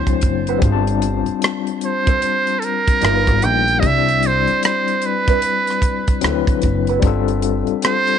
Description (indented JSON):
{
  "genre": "R&B, neo-soul",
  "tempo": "75 BPM",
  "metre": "4/4",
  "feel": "swing 64% on 16ths",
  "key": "unclear",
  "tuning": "A4 = 441 Hz",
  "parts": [
    { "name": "trumpet with metal mute", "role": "melody", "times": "0.0-8.2 s", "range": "A4 to G5", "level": "-19 LUFS", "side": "right 4 dB", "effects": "tape echo" },
    { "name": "overdriven tine electric piano", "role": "accompaniment", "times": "0.0-8.2 s", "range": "F#3 to A5", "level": "-21 LUFS", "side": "left 13 dB", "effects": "medium tremolo" },
    { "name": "upright bass", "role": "bass", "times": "0.0-7.7 s", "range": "F#1 to D2", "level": "-20 LUFS", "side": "right 1 dB", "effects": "transformer saturation" },
    { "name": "tight funk drum kit", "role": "drums", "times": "0.1-8.2 s", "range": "hi-hat, kick drum, rim click", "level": "-19 LUFS", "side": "right 1 dB", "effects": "none" },
    { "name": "electric guitar through a small old amp", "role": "second line", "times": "0.5-7.0 s", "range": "C4 to C5", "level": "-25 LUFS", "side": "right 15 dB", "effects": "wah, spring reverb" }
  ],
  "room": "light reverb, small room ambience",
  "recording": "1960s-style stereo with parts hard left and right, nothing above 10.4 kHz",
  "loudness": "-15 LUFS",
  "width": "side -8 dB against mid",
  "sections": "0.0-8.2 A section",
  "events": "none",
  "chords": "0.0 D9; 0.6 G9sus4; 3.0 G7alt; 3.8 Cmaj9; 6.2 D13; 7.0 G9sus4",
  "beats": "| 0.62 1.42 2.22 3.02 | 3.82 4.62 5.42 6.22 | 7.02 7.82"
}